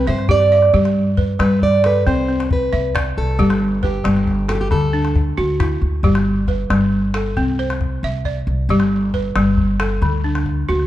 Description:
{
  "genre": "west african traditional, West African string and xylophone music",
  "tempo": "90 BPM (dotted quarters)",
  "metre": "12/8",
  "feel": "straight",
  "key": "G major",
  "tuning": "A4 = 440 Hz",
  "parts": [
    { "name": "fingerpicked plugged-in steel-string acoustic guitar", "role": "melody", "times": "0.0-5.2 s", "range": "G4 to D5", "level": "-19 LUFS", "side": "right 2 dB", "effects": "none" },
    { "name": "balafon", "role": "arpeggios", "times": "0.0-10.9 s", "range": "D3 to E5", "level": "-19 LUFS", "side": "equal", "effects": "none" },
    { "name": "upright bass", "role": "bass", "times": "0.0-10.9 s", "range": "G1 to G2", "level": "-20 LUFS", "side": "equal", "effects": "none" },
    { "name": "calabash", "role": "percussion", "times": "0.1-10.9 s", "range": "none", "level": "-23 LUFS", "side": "left 2 dB", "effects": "none" }
  ],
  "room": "moderate recital hall reverb, RT60 1.6 s",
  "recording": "dark, warm production",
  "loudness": "-15 LUFS",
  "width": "side -13 dB against mid",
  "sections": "0.7-10.9 A section",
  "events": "none",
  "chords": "0.0 C; 0.7 G; 2.1 C; 3.4 G; 4.7 D; 6.0 G; 7.4 C; 8.7 G; 10.0 D",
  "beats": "0.08 | 0.74 1.40 2.06 2.72 | 3.39 4.05 4.71 5.37 | 6.04 6.70 7.37 8.03 | 8.70 9.36 10.03 10.70"
}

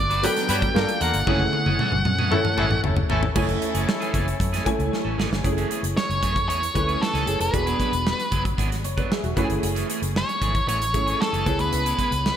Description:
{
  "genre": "polished 1980s jazz-funk pop",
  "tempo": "115 BPM",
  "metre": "4/4",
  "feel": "straight",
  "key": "F# minor",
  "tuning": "A4 = 440 Hz",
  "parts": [
    { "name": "octave-fuzz lead guitar", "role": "melody", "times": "0.0-2.8, 6.0-12.4 s", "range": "A4 to G5", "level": "-24 LUFS", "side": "equal", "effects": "distortion" },
    { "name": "clear baby grand piano", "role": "accompaniment", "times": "0.0-12.4 s", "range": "F#3 to B5", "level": "-28 LUFS", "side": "equal", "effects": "analog chorus" },
    { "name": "vintage muted fingered electric bass", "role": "bass", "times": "0.0-12.3 s", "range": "E1 to G2", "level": "-26 LUFS", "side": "equal", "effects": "none" },
    { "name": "electric guitar at the edge of break-up", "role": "riff", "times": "0.1-12.3 s", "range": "E3 to C#5", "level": "-32 LUFS", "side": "right 5 dB", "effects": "wide subtle chorus" },
    { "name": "modern studio drum kit", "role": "drums", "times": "0.1-12.4 s", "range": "crash cymbal, hi-hat, kick drum, snare drum, toms", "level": "-26 LUFS", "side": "equal", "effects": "gated reverb" },
    { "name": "clear horn section", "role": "second line", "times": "0.2-5.1 s", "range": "A3 to B4", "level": "-30 LUFS", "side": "left 3 dB", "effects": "none" }
  ],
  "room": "moderate lush hall reverb, RT60 1.8 s, small room ambience",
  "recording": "bright 1980s-style digital production",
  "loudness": "-20 LUFS",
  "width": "side -9 dB against mid",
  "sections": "0.0-3.4 A section; 3.4-5.4 B section; 5.4-12.4 C section",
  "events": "drum fill 1.3-3.4, 4.9-5.4; grand piano fill 8.8-9.6",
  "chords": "0.0 Gmaj7; 0.8 Gm9; 1.3 F#m9; 7.5 E9; 9.4 F#m9; 11.5 C#m7",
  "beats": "0.23 0.75 | 1.27 1.79 2.31 2.83 | 3.36 3.88 4.40 4.92 | 5.45 5.97 6.49 7.01 | 7.54 8.06 8.59 9.11 | 9.63 10.16 10.68 11.20 | 11.73 12.25"
}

